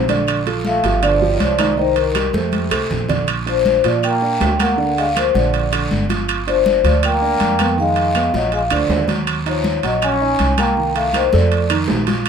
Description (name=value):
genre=Afro-Cuban jazz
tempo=160 BPM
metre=4/4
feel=straight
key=Bb major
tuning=A4 = 440 Hz
part: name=vibraphone with soft mallets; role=melody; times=0.0-11.7 s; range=A4 to Ab5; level=-18 LUFS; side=left 2 dB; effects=none
part: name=trombone with plunger mute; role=second line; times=0.0-11.7 s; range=C3 to Db4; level=-24 LUFS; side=left 5 dB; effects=none
part: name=dark concert grand piano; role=accompaniment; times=0.0-12.3 s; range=D3 to F#5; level=-23 LUFS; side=right 4 dB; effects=none
part: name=upright bass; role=bass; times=0.0-12.3 s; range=G1 to Bb2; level=-22 LUFS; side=right 2 dB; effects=none
part: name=congas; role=percussion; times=0.1-12.3 s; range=none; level=-24 LUFS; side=left 3 dB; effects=none
part: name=guiro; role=percussion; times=0.1-12.3 s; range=none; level=-30 LUFS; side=left 1 dB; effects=none
part: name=timbales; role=percussion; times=0.1-12.3 s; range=none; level=-24 LUFS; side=right 8 dB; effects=none
part: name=claves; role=percussion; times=0.3-12.3 s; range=none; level=-30 LUFS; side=left 5 dB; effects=none
room=moderate club ambience, RT60 0.5 s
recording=minimal, uncompressed stereo recording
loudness=-14 LUFS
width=side -7 dB against mid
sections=0.0-3.3 A section; 3.3-12.3 B section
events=drum fill 2.5-3.3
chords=0.3 Bbmaj7; 1.0 G5; 1.8 Cm7; 2.5 F; 3.3 Bb69; 4.8 Daug; 6.3 Gm7; 7.8 Fm7b5; 8.5 Bb; 9.3 Ebm9; 10.8 Cm7; 11.5 F7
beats=| 0.28 0.65 1.03 1.41 | 1.78 2.16 2.53 2.91 | 3.28 3.66 4.03 4.41 | 4.78 5.16 5.53 5.91 | 6.28 6.66 7.03 7.40 | 7.78 8.15 8.53 8.90 | 9.27 9.65 10.02 10.39 | 10.77 11.14 11.52 11.89 | 12.26